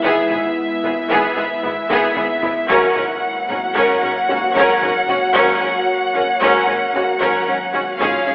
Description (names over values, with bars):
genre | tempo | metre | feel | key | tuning
cinematic, hybrid orchestral and electronic film score | 113 BPM | 5/4 | straight | unclear | A4 = 440 Hz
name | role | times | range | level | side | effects
rich symphonic violin section | melody | 0.0-8.3 s | E5 to F#5 | -20 LUFS | equal | none
rich studio violin section | second line | 0.0-8.3 s | E4 to A#4 | -21 LUFS | equal | none
rich symphonic viola section | accompaniment | 0.0-8.3 s | B3 to C#4 | -19 LUFS | equal | none
dark French horn section | sustained chords | 0.0-8.2 s | A#3 to F#4 | -25 LUFS | equal | none
ethereal airy pad | sustained chords | 0.0-8.3 s | E#3 to E5 | -24 LUFS | equal | ensemble chorus, built-in reverb
soft round pluck | arpeggios | 0.0-8.3 s | C#3 to F#4 | -32 LUFS | equal | none
pure sine sub bass | bass | 0.0-8.3 s | G#1 | -52 LUFS | equal | none
rich symphonic cello section | bass | 0.0-8.3 s | G#2 | -29 LUFS | equal | none
rich symphonic double bass section | bass | 0.0-8.3 s | G#1 | -33 LUFS | equal | none
solo taiko drums | drums | 0.0-8.3 s | none | -34 LUFS | equal | none
room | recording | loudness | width
wet scoring stage reverb, RT60 1.7 s | telephone sound | -14 LUFS | side -24 dB against mid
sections
0.0-8.3 A section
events
drum fill 1.9-2.7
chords
0.0 E/G#; 2.7 F#/G#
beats
| 0.04 0.57 1.10 1.63 2.17 | 2.70 3.23 3.76 4.29 4.82 | 5.35 5.88 6.41 6.94 7.47 | 8.01